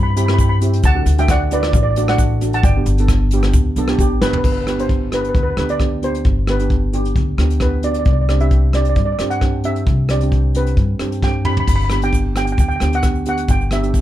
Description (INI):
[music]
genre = calypso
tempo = 133 BPM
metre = 4/4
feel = straight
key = G major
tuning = A4 = 442 Hz
[part]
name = steel pan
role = melody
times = 0.0-14.0 s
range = G4 to B5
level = -22 LUFS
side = right 1 dB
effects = none
[part]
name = upright bass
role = bass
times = 0.0-14.0 s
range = G1 to G2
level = -18 LUFS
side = equal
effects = none
[part]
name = steel pan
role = accompaniment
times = 0.2-14.0 s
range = A3 to A4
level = -23 LUFS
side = right 3 dB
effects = none
[part]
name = soft brush drum kit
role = drums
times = 0.2-14.0 s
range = crash cymbal, hi-hat, kick drum, rim click, snare drum, toms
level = -19 LUFS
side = equal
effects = none
[part]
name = tube shaker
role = percussion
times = 0.2-4.3, 11.7-14.0 s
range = none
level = -36 LUFS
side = right 6 dB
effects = none
[sound]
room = little or no reverb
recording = dark, warm production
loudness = -14 LUFS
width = side -13 dB against mid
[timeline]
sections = 0.0-4.4 A section; 4.4-14.0 B section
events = drum fill 4.2, 11.2-11.7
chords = 0.0 C; 0.8 D; 2.6 G; 8.1 Csus2; 11.7 G